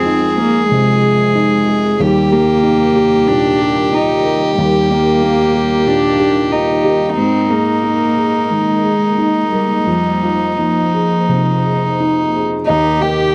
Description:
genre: neoclassical piano and strings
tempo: 84-94 BPM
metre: 4/4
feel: rubato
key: Eb major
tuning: A4 = 440 Hz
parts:
  - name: warm violin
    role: melody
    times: 0.0-13.3 s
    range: Eb4 to Ab4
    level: -18 LUFS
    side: equal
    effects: none
  - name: rich cello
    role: second line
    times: 0.0-13.3 s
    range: F3 to G4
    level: -19 LUFS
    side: equal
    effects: none
  - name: felt-muted upright piano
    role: accompaniment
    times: 0.0-13.3 s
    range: Eb2 to G5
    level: -20 LUFS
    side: equal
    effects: none
  - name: warm studio string section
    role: sustained chords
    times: 0.0-13.3 s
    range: Eb3 to C5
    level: -28 LUFS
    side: equal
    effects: none
room: light reverb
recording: dry, close 1970s-style studio recording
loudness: -14 LUFS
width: mono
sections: 0.0-12.7 A section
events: none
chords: 0.0 Fm7; 2.0 Eb; 7.2 Absus2; 9.9 Fm7; 12.7 Eb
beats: 0.05 0.70 1.35 | 2.00 2.64 3.29 3.93 | 4.57 5.22 5.88 6.53 | 7.18 7.83 8.50 9.17 | 9.87 10.58 11.29 11.99 | 12.68 13.34

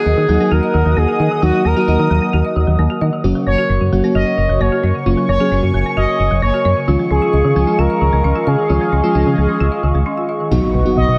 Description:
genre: synth-pop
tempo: 132 BPM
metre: 4/4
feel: straight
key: F# major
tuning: A4 = 441 Hz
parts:
  - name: expressive synth lead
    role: melody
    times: 0.0-11.2 s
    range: F#4 to D#5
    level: -21 LUFS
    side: equal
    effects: chorus
  - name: FM electric piano with soft pad layer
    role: accompaniment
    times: 0.0-11.1 s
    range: E#3 to G#4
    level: -22 LUFS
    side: equal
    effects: chorus
  - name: sweeping resonant pad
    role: sustained chords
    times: 0.0-11.2 s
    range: G#4 to D#6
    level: -25 LUFS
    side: equal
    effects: chorus
  - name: folk marimba with hard mallets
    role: arpeggios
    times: 0.0-10.5 s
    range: C#3 to D#5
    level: -25 LUFS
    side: equal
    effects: tape echo
  - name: solid FM bass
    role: bass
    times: 0.1-11.2 s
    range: F#1 to D#3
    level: -18 LUFS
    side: equal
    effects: none
  - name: impact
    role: sound effects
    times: 10.5-11.2 s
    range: none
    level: -26 LUFS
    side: equal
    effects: none
room: light reverb, digital ambience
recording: none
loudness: -15 LUFS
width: mono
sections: 0.0-10.5 A section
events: break 10.1-10.5; impact 10.5-11.2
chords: 0.0 D#m; 3.2 F#; 6.9 C#add9; 10.5 Badd9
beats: 0.06 0.52 0.97 | 1.43 1.88 2.33 2.79 | 3.24 3.70 4.15 4.61 | 5.06 5.52 5.97 6.42 | 6.88 7.33 7.79 8.24 | 8.70 9.15 9.61 10.06 | 10.52 10.97

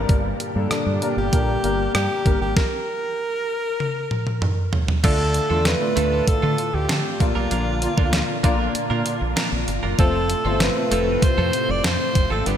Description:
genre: 1980s-style pop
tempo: 97 BPM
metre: 4/4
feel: straight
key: unclear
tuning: A4 = 440 Hz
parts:
  - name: warm grand piano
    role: accompaniment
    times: 0.0-12.6 s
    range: G2 to D5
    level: -27 LUFS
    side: left 3 dB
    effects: ensemble chorus
  - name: soft string machine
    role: sustained chords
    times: 0.0-12.6 s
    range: A2 to G4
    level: -29 LUFS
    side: equal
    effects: ensemble chorus
  - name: fingered electric bass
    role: bass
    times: 0.0-12.6 s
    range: F1 to D3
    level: -24 LUFS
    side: equal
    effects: none
  - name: clean 12-bit digital drum machine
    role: drums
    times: 0.1-12.6 s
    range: crash cymbal, hi-hat, kick drum, rim click, snare drum, toms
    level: -22 LUFS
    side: equal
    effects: gated reverb
  - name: clear alto saxophone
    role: melody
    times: 0.7-12.6 s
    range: D4 to D5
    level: -25 LUFS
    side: right 1 dB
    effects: digital delay
  - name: direct-recorded clean electric guitar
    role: riff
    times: 5.0-12.6 s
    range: G3 to Bb4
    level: -30 LUFS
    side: right 5 dB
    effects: wide subtle chorus, digital delay
room: moderate lush hall reverb, RT60 3.0 s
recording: bright 1980s-style digital production, faint mains hum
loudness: -18 LUFS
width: side -9 dB against mid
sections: 0.0-5.0 A section; 5.0-12.6 B section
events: stop 2.6-5.0; drum fill 3.8-5.0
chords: 0.0 Gm; 5.0 Dm; 7.2 Bb; 10.0 F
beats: | 0.09 0.71 1.33 1.95 | 2.57 3.18 3.80 4.42 | 5.04 5.66 6.28 6.89 | 7.51 8.13 8.75 9.37 | 9.99 10.61 11.22 11.84 | 12.46

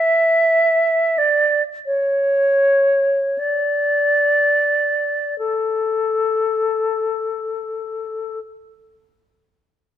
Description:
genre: classical, free, expressive piece for unaccompanied flute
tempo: free time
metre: none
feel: none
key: A major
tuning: A4 = 439 Hz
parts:
  - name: silver concert flute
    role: solo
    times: 0.0-8.4 s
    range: A4 to E5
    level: -16 LUFS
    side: equal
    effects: none
room: light reverb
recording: close, detailed microphones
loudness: -16 LUFS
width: side -10 dB against mid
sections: 0.0-5.4 A section; 5.4-10.0 B section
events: slowing down 0.0-5.4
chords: none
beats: free time

